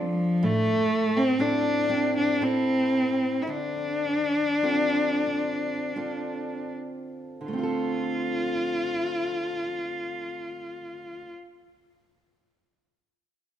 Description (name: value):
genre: celtic folk, Celtic slow air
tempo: 38-64 BPM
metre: 3/4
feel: rubato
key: D minor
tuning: A4 = 440 Hz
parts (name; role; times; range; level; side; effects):
- warm cello; melody; 0.0-11.3 s; F3 to F4; -25 LUFS; left 1 dB; none
- fingerpicked steel-string acoustic guitar; accompaniment; 0.0-11.5 s; A2 to A4; -31 LUFS; right 3 dB; none
room: moderate scoring stage reverb, RT60 2.0 s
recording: minimal, uncompressed stereo recording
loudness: -24 LUFS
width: side -10 dB against mid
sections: 0.0-7.5 A section; 7.5-11.9 B section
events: slowing down 0.4-7.5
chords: 0.4 Am; 3.5 Dm7